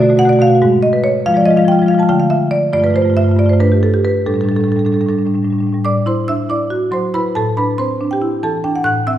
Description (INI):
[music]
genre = classical, contemporary piece for solo marimba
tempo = 278 BPM (eighths)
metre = 7/8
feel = rubato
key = unclear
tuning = A4 = 440 Hz
[part]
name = marimba with medium mallets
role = solo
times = 0.0-9.2 s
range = G2 to F#6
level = -12 LUFS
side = equal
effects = none
[sound]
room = wet recital hall reverb, RT60 1.6 s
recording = heard from further back in the room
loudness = -12 LUFS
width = side -12 dB against mid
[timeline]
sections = 0.0-5.8 A section; 5.8-9.2 B section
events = none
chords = 0.0 B5; 0.6 G#m7; 1.2 Fm; 2.1 Dm; 2.7 Gsus2; 4.3 A7sus4; 5.8 Am6; 7.4 C69/A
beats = 0.19 0.40 0.61 0.83 1.04 | 1.25 1.46 1.67 1.88 2.09 2.31 2.52 | 2.73 2.95 3.16 3.38 3.59 3.81 4.04 | 4.26 4.49 4.71 4.94 5.17 5.39 5.62 | 5.84 6.05 6.27 6.49 6.71 6.92 7.14 | 7.35 7.57 7.78 8.00 8.21 8.43 8.64 | 8.86 9.07